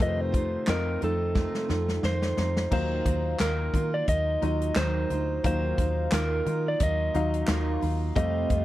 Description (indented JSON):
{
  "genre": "piano-driven pop",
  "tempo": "88 BPM",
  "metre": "4/4",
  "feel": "swing 56% on 16ths",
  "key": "unclear",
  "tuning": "A4 = 440 Hz",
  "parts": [
    { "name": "lightly driven lead guitar", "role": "melody", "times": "0.0-8.6 s", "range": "A4 to Eb5", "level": "-30 LUFS", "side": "equal", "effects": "none" },
    { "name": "clear concert grand piano", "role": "accompaniment", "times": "0.0-8.6 s", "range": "Bb2 to F5", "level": "-34 LUFS", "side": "left 6 dB", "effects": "none" },
    { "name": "picked steel-string acoustic guitar", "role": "riff", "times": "0.0-8.6 s", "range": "F2 to F4", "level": "-34 LUFS", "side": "right 8 dB", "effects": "none" },
    { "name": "vintage muted picked electric bass", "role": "bass", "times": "0.0-8.6 s", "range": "D2 to Eb3", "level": "-29 LUFS", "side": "equal", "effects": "none" },
    { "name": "natural country drum kit", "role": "drums", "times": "0.0-8.6 s", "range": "crash cymbal, handclaps, hi-hat, kick drum, snare drum", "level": "-29 LUFS", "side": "equal", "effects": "none" }
  ],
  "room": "little or no reverb",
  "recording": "dry, close 1970s-style studio recording",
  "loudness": "-24 LUFS",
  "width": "side -15 dB against mid",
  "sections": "0.0-2.7 A section; 2.7-8.6 B section",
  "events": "drum fill 1.4-2.7",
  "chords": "0.0 F7; 2.7 Ebmadd9"
}